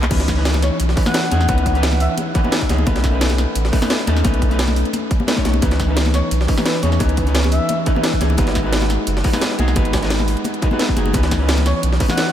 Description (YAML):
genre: liquid drum and bass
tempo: 174 BPM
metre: 4/4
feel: straight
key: C# minor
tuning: A4 = 443 Hz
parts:
  - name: vintage hollow-body jazz guitar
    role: accompaniment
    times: 0.0-12.3 s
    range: E3 to C#5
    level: -22 LUFS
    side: left 1 dB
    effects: tape echo
  - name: warm sub bass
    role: bass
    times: 0.0-12.0 s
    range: F#1 to E2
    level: -18 LUFS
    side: equal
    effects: none
  - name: garage drum kit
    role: drums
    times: 0.0-12.2 s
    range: crash cymbal, handclaps, hi-hat, ride cymbal, snare drum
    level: -24 LUFS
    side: equal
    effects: none
  - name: congas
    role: percussion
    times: 0.0-12.2 s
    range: none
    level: -26 LUFS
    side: left 2 dB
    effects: none
  - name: electronic kick drum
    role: drums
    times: 0.1-12.1 s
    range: none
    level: -20 LUFS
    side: equal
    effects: overdrive
  - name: jungle sampler-style drum kit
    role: drums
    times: 0.1-12.3 s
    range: hi-hat, snare drum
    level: -28 LUFS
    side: equal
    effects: overdrive, high-pass filter on hats, high-pass filter on snare
  - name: breathy flute-like synth lead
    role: melody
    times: 0.6-2.1, 6.1-7.8, 11.7-12.3 s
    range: B4 to F#5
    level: -27 LUFS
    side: equal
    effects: chorus, vintage 12-bit sampler grit, diffuse ambient delay
room: moderate huge ambient reverb, RT60 8.7 s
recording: dreamy mix soaked in reverb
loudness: -15 LUFS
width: side -10 dB against mid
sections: 0.1-12.3 A section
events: drop 0.1-12.3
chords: 0.1 C#m9; 2.9 B9; 5.6 C#m9; 8.4 G#m7; 11.1 C#m9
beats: | 0.11 0.45 0.80 1.14 | 1.49 1.83 2.18 2.52 | 2.87 3.21 3.56 3.90 | 4.25 4.59 4.93 5.28 | 5.62 5.97 6.31 6.66 | 7.00 7.35 7.69 8.04 | 8.38 8.73 9.07 9.42 | 9.76 10.11 10.45 10.80 | 11.14 11.49 11.83 12.18